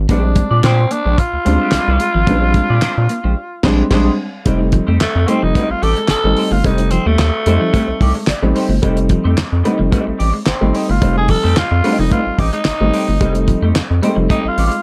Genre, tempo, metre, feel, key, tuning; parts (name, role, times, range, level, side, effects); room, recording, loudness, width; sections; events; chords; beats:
funk; 110 BPM; 4/4; straight; F mixolydian; A4 = 440 Hz
round analog bass; bass; 0.0-14.7 s; F1 to Bb2; -18 LUFS; equal
growling tenor saxophone; melody; 0.1-14.8 s; A3 to A4; -22 LUFS; equal
semi-hollow electric guitar; accompaniment; 0.1-14.8 s; Ab3 to D5; -27 LUFS; equal; wah, analog chorus
clean electric guitar; riff; 0.1-14.8 s; F3 to C4; -25 LUFS; equal
warm upright piano; stabs; 0.1-14.7 s; G3 to D5; -22 LUFS; equal; slapback echo
damped 70s drum kit; drums; 0.1-14.8 s; crash cymbal, handclaps, hi-hat, kick drum, snare drum; -21 LUFS; equal
little or no reverb; dark, warm production; -15 LUFS; mono
0.0-4.5 A section; 4.5-14.8 B section
band accent 3.4-4.5; tenor saxophone solo 4.5-14.8; upright piano fill 8.0-8.8
0.0 Bb13; 4.5 F9
| 0.10 0.64 1.19 1.73 | 2.28 2.83 3.37 3.92 | 4.46 5.01 5.56 6.10 | 6.65 7.20 7.74 8.29 | 8.83 9.38 9.93 10.47 | 11.02 11.57 12.12 12.66 | 13.21 13.76 14.30